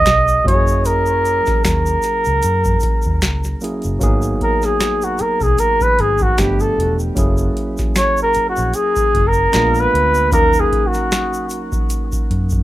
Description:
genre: R&B, neo-soul.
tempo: 76 BPM.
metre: 4/4.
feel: swing 56% on 16ths.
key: G# minor.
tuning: A4 = 439 Hz.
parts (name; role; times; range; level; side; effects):
warm flugelhorn; melody; 0.0-11.6 s; F#4 to D#5; -16 LUFS; equal; tape echo.
overdriven tine electric piano; accompaniment; 0.0-12.6 s; F3 to A#4; -24 LUFS; right 2 dB; plate reverb.
vintage muted fingered electric bass; bass; 0.0-12.6 s; E1 to F#2; -19 LUFS; equal; none.
booming analog drum machine; drums; 0.1-12.6 s; hi-hat, kick drum, snare drum; -20 LUFS; equal; none.
finger snaps and tube shaker; percussion; 0.1-12.6 s; none; -30 LUFS; equal; none.
room: light reverb.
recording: rough home demo mix.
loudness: -14 LUFS.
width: side -15 dB against mid.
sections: 0.0-4.0 A section; 4.0-12.6 B section.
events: flugelhorn solo 4.0-12.6.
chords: 0.5 F#7; 4.0 G#m9; 6.4 G9; 7.2 F#9; 9.5 A#7b9; 10.3 D#m7.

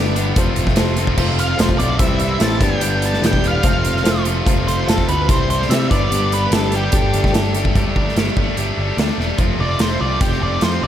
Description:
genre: classic rock.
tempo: 146 BPM.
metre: 4/4.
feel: straight.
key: G mixolydian.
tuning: A4 = 440 Hz.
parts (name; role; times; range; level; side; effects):
dark upright piano; accompaniment; 0.0-7.7 s; D4 to C5; -27 LUFS; left 3 dB; slapback echo.
overdriven electric guitar; riff; 0.0-10.9 s; F2 to G4; -21 LUFS; left 1 dB; slapback echo.
overdriven picked electric bass; bass; 0.0-10.9 s; E1 to C3; -21 LUFS; equal; none.
big rock drum kit; drums; 0.2-10.7 s; crash cymbal, hi-hat, kick drum, snare drum; -19 LUFS; equal; none.
octave-fuzz lead guitar; melody; 1.4-10.9 s; G4 to A5; -23 LUFS; right 1 dB; distortion, slapback echo.
room: moderate scoring stage reverb, RT60 2.0 s.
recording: big arena sound.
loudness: -15 LUFS.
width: side -10 dB against mid.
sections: 0.0-7.8 A section; 7.8-9.4 B section; 9.4-10.9 C section.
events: lead electric guitar solo 9.4-10.9.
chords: 0.4 F; 2.0 C; 2.6 G; 3.6 F; 5.3 C; 5.9 G; 6.9 Gsus2; 9.4 F.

